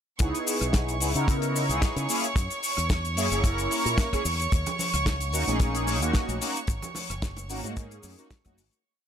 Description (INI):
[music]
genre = nu-disco, nu disco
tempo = 111 BPM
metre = 4/4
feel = swing 54% on 16ths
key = C# dorian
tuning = A4 = 440 Hz
[part]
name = mellow synth brass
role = accompaniment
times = 0.2-8.6 s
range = A#3 to A#4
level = -31 LUFS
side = equal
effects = chorus, phaser, ping-pong delay
[part]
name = rich chamber violin section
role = sustained chords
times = 0.2-8.9 s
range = C#5 to C#6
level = -31 LUFS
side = right 3 dB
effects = sidechain pumping
[part]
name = fingered electric bass with an envelope filter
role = bass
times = 0.2-8.7 s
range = F#1 to C#3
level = -30 LUFS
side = equal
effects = tube saturation
[part]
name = damped 70s drum kit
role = drums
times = 0.2-8.8 s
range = cabasa, hi-hat, rim click, snare drum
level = -31 LUFS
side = left 4 dB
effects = small room ambience
[part]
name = kick drum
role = drums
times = 0.2-8.6 s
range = none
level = -25 LUFS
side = equal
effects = small room ambience
[part]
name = maracas, congas and bongos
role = percussion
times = 4.5-8.8 s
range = none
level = -38 LUFS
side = right 4 dB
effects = none
[sound]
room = little or no reverb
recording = none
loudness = -24 LUFS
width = side -9 dB against mid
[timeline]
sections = 0.2-8.8 drop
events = drop 0.2-8.8; fade-out 6.0-8.8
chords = 0.2 C#m9; 2.1 F#9; 4.5 D#m7; 6.7 G#9sus4